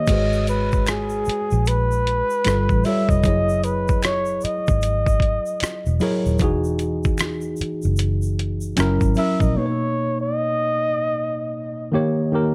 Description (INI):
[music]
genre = R&B, neo-soul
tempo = 76 BPM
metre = 4/4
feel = swing 62% on 16ths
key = G# minor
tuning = A4 = 439 Hz
[part]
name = breathy flugelhorn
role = melody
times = 0.0-11.9 s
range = G#4 to E5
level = -26 LUFS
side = equal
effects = tape echo
[part]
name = tine electric piano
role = accompaniment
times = 0.0-12.5 s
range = B2 to D#5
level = -26 LUFS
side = equal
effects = none
[part]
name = vintage muted fingered electric bass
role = bass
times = 0.1-9.5 s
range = D#1 to A#1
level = -25 LUFS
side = equal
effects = none
[part]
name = boom bap sampler-style drum kit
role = drums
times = 0.1-9.5 s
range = crash cymbal, hi-hat, kick drum, rim click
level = -25 LUFS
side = equal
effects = none
[part]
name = egg shaker and finger snaps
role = percussion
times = 0.1-9.5 s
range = none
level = -40 LUFS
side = equal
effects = none
[sound]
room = light reverb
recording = dark, warm production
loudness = -21 LUFS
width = mono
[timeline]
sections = 0.1-12.5 A section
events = none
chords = 0.1 G#m11; 2.4 G9; 3.2 F#7sus2; 6.4 Emaj9; 8.8 F#7; 9.6 Bmaj9; 11.9 D#7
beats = | 0.08 0.87 1.66 2.45 | 3.24 4.03 4.82 5.61 | 6.40 7.19 7.98 8.77 | 9.55 10.34 11.13 11.92